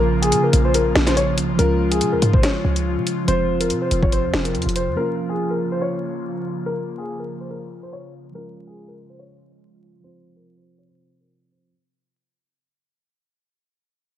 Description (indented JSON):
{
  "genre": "hip hop, drill",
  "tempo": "142 BPM",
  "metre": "4/4",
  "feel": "half-time",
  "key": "Bb minor",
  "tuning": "A4 = 440 Hz",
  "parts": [
    { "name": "dark grand piano", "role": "melody", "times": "0.0-11.7 s", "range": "Ab4 to Db5", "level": "-24 LUFS", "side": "left 2 dB", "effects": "low-pass filter" },
    { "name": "mellow tine electric piano", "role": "accompaniment", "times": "0.0-11.7 s", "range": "F3 to F4", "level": "-26 LUFS", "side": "right 3 dB", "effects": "low-pass filter" },
    { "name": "airy breathy pad", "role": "sustained chords", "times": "0.0-11.7 s", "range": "C3 to F4", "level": "-26 LUFS", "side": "equal", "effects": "chorus, low-pass filter" },
    { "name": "short 808-style bass", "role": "bass", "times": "0.0-5.0 s", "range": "F1 to Db3", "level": "-22 LUFS", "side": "equal", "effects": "none" },
    { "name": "drill drum kit", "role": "drums", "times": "0.2-4.9 s", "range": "hi-hat, kick drum, snare drum", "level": "-21 LUFS", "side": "equal", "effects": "none" }
  ],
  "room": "light reverb",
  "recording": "vinyl crackle",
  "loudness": "-18 LUFS",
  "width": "side -11 dB against mid",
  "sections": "0.0-11.7 A section",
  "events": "fade-out 0.0-11.7; filter sweep 0.0-11.7",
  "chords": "0.0 Bbm; 1.6 Db; 3.3 F5; 5.0 Bbm; 8.3 Db; 10.0 F5"
}